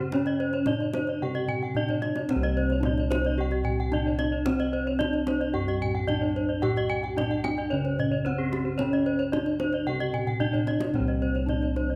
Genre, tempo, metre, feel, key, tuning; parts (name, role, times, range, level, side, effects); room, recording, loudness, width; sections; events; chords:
Balinese gamelan; 111 BPM; 4/4; straight; C pelog; A4 = 440 Hz
gamelan-type bronze metallophone; melody; 0.0-12.0 s; C4 to G4-45c; -32 LUFS; equal
gamelan-type bronze metallophone; arpeggios; 0.0-12.0 s; Ab4-40c to G5-45c; -36 LUFS; equal
gamelan-type bossed gongs; bass; 0.0-12.0 s; C2 to G4-45c; -31 LUFS; equal
kendang; percussion; 0.1-11.9 s; -36 LUFS; equal
gamelan-type bronze metallophone; arpeggios; 0.3-11.9 s; G4-45c to Ab5-40c; -36 LUFS; equal
moderate recital hall reverb, RT60 1.7 s; -27 LUFS; mono
0.0-2.3 A section; 2.3-12.0 A section
drum fill 1.8-2.3, 10.3-10.9